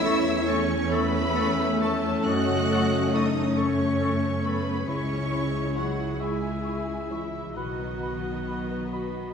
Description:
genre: cinematic, emotional film score for orchestra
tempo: 45 BPM (dotted quarters)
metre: 6/8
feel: rubato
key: C# minor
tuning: A4 = 440 Hz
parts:
  - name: warm symphonic violin section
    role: melody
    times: 0.0-9.3 s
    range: D#5 to F#6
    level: -36 LUFS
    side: left 1 dB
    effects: none
  - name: bright clarinet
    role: second line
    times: 0.0-9.1 s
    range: E4 to A4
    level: -37 LUFS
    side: equal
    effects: none
  - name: warm oboe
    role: second line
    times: 0.0-9.3 s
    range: C#5 to B5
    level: -35 LUFS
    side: right 1 dB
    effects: none
  - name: warm symphonic violin section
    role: second line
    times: 0.0-9.3 s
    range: D#4 to F#5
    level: -37 LUFS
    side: left 3 dB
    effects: none
  - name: rich symphonic viola section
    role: accompaniment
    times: 0.0-9.3 s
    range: G#3 to F#4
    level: -30 LUFS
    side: right 2 dB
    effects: none
  - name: dark French horn section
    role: sustained chords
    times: 0.0-9.3 s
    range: F#3 to F#4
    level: -30 LUFS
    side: left 5 dB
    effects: none
  - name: concert harp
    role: arpeggios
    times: 0.0-9.3 s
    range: E2 to C#6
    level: -32 LUFS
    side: left 4 dB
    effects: none
  - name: warm studio cello section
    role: bass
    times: 0.0-9.3 s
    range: D#3 to F#4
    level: -33 LUFS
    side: right 4 dB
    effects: none
  - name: warm studio double bass section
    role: bass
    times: 0.0-9.3 s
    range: B1 to F#2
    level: -32 LUFS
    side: right 5 dB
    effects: none
  - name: flute section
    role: second line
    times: 0.1-9.0 s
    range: B5 to C#6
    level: -37 LUFS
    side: left 4 dB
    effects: none
room: wet scoring stage reverb, RT60 1.6 s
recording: none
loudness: -23 LUFS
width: side -6 dB against mid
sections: 0.0-9.3 A section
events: none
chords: 0.0 A/E; 2.3 F#m; 4.9 C#m; 7.6 B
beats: 0.92 | 2.26 3.58 | 4.88 6.21 | 7.57 8.94

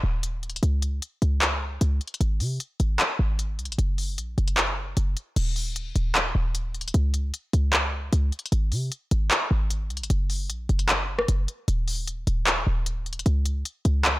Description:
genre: hip hop, trap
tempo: 152 BPM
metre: 4/4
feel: half-time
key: unclear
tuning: A4 = 440 Hz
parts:
  - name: short 808-style bass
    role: bass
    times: 0.0-14.2 s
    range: Eb1 to C3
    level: -24 LUFS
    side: equal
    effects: none
  - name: trap drum kit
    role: drums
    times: 0.2-14.1 s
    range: crash cymbal, handclaps, hi-hat, rim click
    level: -26 LUFS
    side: equal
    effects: none
room: little or no reverb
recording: blown-out, overdriven recording, overdrive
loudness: -23 LUFS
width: side -18 dB against mid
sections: 0.0-5.4 A section; 5.4-14.2 B section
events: none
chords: none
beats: 0.23 | 0.63 1.02 1.42 1.81 | 2.21 2.60 3.00 3.39 | 3.79 4.18 4.58 4.97 | 5.36 5.76 6.15 6.55 | 6.94 7.34 7.73 8.13 | 8.52 8.92 9.31 9.71 | 10.10 10.50 10.89 11.29 | 11.68 12.07 12.47 12.86 | 13.26 13.65 14.05

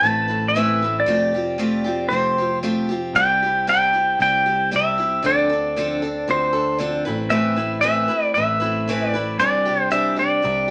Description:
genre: folk rock and heartland rock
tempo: 115 BPM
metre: 4/4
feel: straight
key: C major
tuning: A4 = 441 Hz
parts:
  - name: pedal steel guitar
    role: melody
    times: 0.0-10.7 s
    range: C5 to A5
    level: -21 LUFS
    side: equal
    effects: none
  - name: picked steel-string acoustic guitar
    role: accompaniment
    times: 0.0-10.7 s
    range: A2 to B4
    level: -26 LUFS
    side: equal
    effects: none
  - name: picked electric bass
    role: bass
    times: 0.0-10.7 s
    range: F1 to D2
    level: -32 LUFS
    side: equal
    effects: none
room: wet studio reverb, RT60 0.5 s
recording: none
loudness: -20 LUFS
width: mono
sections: 0.0-10.7 A section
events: none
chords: 0.0 Amadd9; 1.1 Fadd9; 3.2 C; 5.2 Dm7; 7.1 Amadd9; 9.4 Cadd9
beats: 0.01 0.54 | 1.06 1.58 2.11 2.63 | 3.15 3.67 4.19 4.71 | 5.24 5.76 6.28 6.80 | 7.32 7.84 8.36 8.88 | 9.40 9.92 10.44

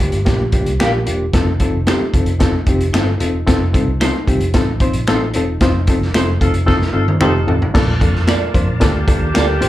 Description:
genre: uptempo 1960s-style soul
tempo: 112 BPM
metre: 4/4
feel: straight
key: Bb major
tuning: A4 = 440 Hz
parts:
  - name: reed electric piano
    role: accompaniment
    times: 0.0-9.7 s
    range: Bb2 to C5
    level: -19 LUFS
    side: left 2 dB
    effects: tremolo, plate reverb, slapback echo
  - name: vintage muted fingered electric bass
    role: bass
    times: 0.0-9.7 s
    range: E1 to F2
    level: -19 LUFS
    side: equal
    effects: none
  - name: vintage drum kit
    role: drums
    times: 0.0-9.7 s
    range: crash cymbal, hi-hat, kick drum, snare drum, toms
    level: -17 LUFS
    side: equal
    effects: none
  - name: electric guitar through a small old amp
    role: stabs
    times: 0.8-9.5 s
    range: Eb4 to F5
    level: -23 LUFS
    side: right 4 dB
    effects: tremolo, plate reverb, slapback echo
  - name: finger snap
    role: percussion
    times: 0.8-9.5 s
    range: none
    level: -26 LUFS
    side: left 2 dB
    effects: none
  - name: mellow horn section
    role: second line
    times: 6.4-9.7 s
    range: Bb3 to A4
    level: -22 LUFS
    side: equal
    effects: slapback echo
  - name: tonewheel organ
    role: sustained chords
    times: 7.7-9.7 s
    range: Bb4 to A5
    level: -28 LUFS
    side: right 1 dB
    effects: overdrive, chorus vibrato, slow rotary speaker
room: light reverb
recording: live gig heard through the venue's PA, club reverb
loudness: -13 LUFS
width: side -14 dB against mid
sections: 0.0-7.8 A section; 7.8-9.7 B section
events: band accent 5.6-7.8; drum fill 6.7-7.8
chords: 0.0 Gm7; 1.3 F7; 7.8 Bbmaj7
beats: 0.27 0.80 | 1.34 1.87 2.41 2.94 | 3.48 4.01 4.55 5.08 | 5.62 6.15 6.68 7.22 | 7.75 8.29 8.82 9.35

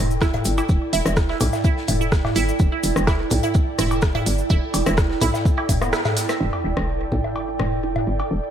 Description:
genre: minimal techno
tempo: 126 BPM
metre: 4/4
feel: straight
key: E minor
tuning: A4 = 440 Hz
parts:
  - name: hollow knocking FM bass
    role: bass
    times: 0.0-8.4 s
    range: E1 to B1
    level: -24 LUFS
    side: equal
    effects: sidechain pumping
  - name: ethereal airy pad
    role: texture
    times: 0.0-8.5 s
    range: E4 to G5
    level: -26 LUFS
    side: right 3 dB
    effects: ensemble chorus, built-in reverb, sidechain pumping
  - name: cabasa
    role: percussion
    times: 0.1-6.4 s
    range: none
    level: -35 LUFS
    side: left 5 dB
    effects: none
  - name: resonant blip pluck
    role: riff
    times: 0.2-8.2 s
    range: B3 to E5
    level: -28 LUFS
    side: right 5 dB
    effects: phaser, sidechain pumping, analog delay
  - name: electronic kick drum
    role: drums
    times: 0.2-5.8 s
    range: none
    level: -19 LUFS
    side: equal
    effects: none
  - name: loose indie drum kit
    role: drums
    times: 0.2-6.4 s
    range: hi-hat, shaker, snare drum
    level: -38 LUFS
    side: equal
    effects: sidechain pumping on hats, high-pass filter on hats, high-pass filter on snare, sidechain pumping on perc, high-pass filter on perc, high-pass filter on room
  - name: minimal click drum kit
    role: drums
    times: 0.2-6.3 s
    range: hi-hat, rim click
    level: -27 LUFS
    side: right 1 dB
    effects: none
  - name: booming analog drum machine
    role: percussion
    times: 0.3-8.3 s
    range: cowbell, rim click, toms, woodblock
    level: -26 LUFS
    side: left 2 dB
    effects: overdrive, tape echo
  - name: sub drop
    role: sound effects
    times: 6.4-8.3 s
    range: none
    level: -33 LUFS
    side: equal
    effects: none
room: moderate lush hall reverb, RT60 1.6 s, digital ambience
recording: dreamy mix soaked in reverb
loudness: -18 LUFS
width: side -9 dB against mid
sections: 0.0-6.4 A section; 6.4-8.5 B section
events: drop 0.0-6.4; band accent 5.9; impact 6.4-8.3; filter sweep on synth arpeggio sound 6.4-8.5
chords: 0.0 Em7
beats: 0.21 | 0.69 1.17 1.64 2.12 | 2.60 3.07 3.55 4.03 | 4.50 4.98 5.45 5.93 | 6.41 6.88 7.36 7.83 | 8.31

